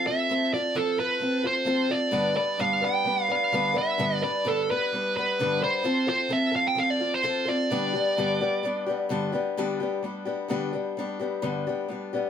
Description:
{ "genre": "rock", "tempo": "130 BPM", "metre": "4/4", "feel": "straight", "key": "G mixolydian", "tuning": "A4 = 441 Hz", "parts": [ { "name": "dark smooth lead guitar", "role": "melody", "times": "0.0-9.1 s", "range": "A4 to G5", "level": "-25 LUFS", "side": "right 2 dB", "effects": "overdrive" }, { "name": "picked steel-string acoustic guitar", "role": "accompaniment", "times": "0.0-12.3 s", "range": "G2 to B4", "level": "-27 LUFS", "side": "left 2 dB", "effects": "none" } ], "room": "moderate studio ambience, RT60 0.5 s", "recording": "band playing live in one room", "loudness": "-24 LUFS", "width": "side -8 dB against mid", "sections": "0.0-9.6 A section; 9.6-12.3 B section", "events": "none", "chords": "0.0 F; 2.1 G; 5.9 F; 7.7 G" }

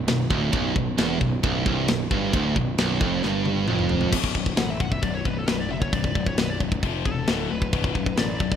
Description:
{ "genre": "heavy metal", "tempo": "133 BPM", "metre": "4/4", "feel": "straight", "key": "B minor", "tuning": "A4 = 440 Hz", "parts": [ { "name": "high-gain distorted guitar", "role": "riff", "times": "0.0-8.6 s", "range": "B1 to F3", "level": "-29 LUFS", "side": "left 13 dB", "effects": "distortion" }, { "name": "high-gain distorted guitar", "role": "riff", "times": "0.0-4.1 s", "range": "B1 to G2", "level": "-24 LUFS", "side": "right 7 dB", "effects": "distortion" }, { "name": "fuzz picked electric bass", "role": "bass", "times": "0.0-8.6 s", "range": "B0 to A1", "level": "-30 LUFS", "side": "equal", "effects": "overdrive" }, { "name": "tight metal drum kit", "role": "drums", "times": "0.1-8.6 s", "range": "crash cymbal, kick drum, ride cymbal, snare drum, toms", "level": "-25 LUFS", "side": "left 1 dB", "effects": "none" }, { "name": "high-gain lead guitar", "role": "melody", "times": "4.6-8.6 s", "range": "A4 to F#5", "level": "-32 LUFS", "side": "left 3 dB", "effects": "distortion" } ], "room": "light reverb, studio ambience", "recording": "rough home demo mix", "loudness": "-21 LUFS", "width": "side -9 dB against mid", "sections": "0.0-4.1 A section; 4.1-8.6 B section", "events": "drum fill 3.2-4.1; lead electric guitar solo 4.1-8.6", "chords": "0.0 Bm; 4.1 B5; 6.8 F5; 7.3 D5; 7.7 Bm" }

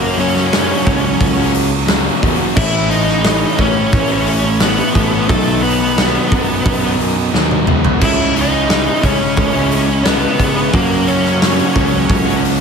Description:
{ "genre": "quiet-loud alternative rock", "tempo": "88 BPM", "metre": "4/4", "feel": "straight", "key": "unclear", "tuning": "A4 = 438 Hz", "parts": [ { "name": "smooth overdriven lead guitar", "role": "melody", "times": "0.0-12.4 s", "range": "A3 to E5", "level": "-18 LUFS", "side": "equal", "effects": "plate reverb" }, { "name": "overdriven semi-hollow guitar", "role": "riff", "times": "0.0-12.6 s", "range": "A2 to F#4", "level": "-21 LUFS", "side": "left 13 dB", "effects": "none" }, { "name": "thick fuzz guitar", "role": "riff", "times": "0.0-12.6 s", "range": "F#2 to F#4", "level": "-21 LUFS", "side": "right 15 dB", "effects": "distortion" }, { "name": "thick fuzz guitar", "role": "riff", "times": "0.0-12.6 s", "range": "F#2 to C#4", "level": "-21 LUFS", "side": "equal", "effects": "distortion" }, { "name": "fuzz fingered electric bass", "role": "bass", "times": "0.0-12.6 s", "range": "A1 to C#3", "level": "-19 LUFS", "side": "equal", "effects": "overdrive" }, { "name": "huge arena drum kit", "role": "drums", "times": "0.2-12.6 s", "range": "crash cymbal, hi-hat, kick drum, snare drum, toms", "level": "-17 LUFS", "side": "equal", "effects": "none" } ], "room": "light reverb", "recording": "none", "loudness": "-12 LUFS", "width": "side -6 dB against mid", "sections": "0.0-12.6 A section", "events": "drum fill 7.3-8.0", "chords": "0.0 F#; 2.6 A; 5.3 B; 8.0 C#m7; 10.7 F#" }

